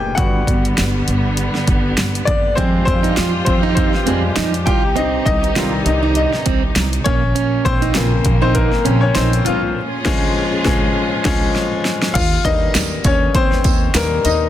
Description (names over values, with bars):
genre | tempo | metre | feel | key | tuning
piano-driven pop | 100 BPM | 4/4 | swing 56% on 16ths | Eb mixolydian | A4 = 441 Hz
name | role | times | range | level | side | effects
bright upright piano | accompaniment | 0.0-14.5 s | Db3 to Ab5 | -19 LUFS | left 4 dB | none
warm studio string section | sustained chords | 0.0-12.1 s | Bb2 to Ab4 | -24 LUFS | right 1 dB | none
upright bass | bass | 0.0-14.5 s | F1 to F2 | -20 LUFS | right 1 dB | none
deep house drum kit | drums | 0.2-14.4 s | crash cymbal, hi-hat, kick drum, snare drum | -18 LUFS | right 1 dB | none
fingerpicked plugged-in steel-string acoustic guitar | riff | 2.6-9.6 s | Bb3 to F4 | -22 LUFS | right 13 dB | none
tambourine | percussion | 12.2-14.4 s | none | -28 LUFS | right 16 dB | none
room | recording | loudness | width
light reverb, studio ambience | dense, heavily limited modern master | -14 LUFS | side -12 dB against mid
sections
0.0-12.2 A section; 12.2-14.5 B section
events
upright piano solo 0.0-12.2, 12.2-14.5; band accent 9.8-12.2; drum fill 11.6-12.2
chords
0.2 G; 2.6 Fmadd9; 4.7 Cm; 7.1 Bbmadd9; 9.8 Db; 12.2 Eb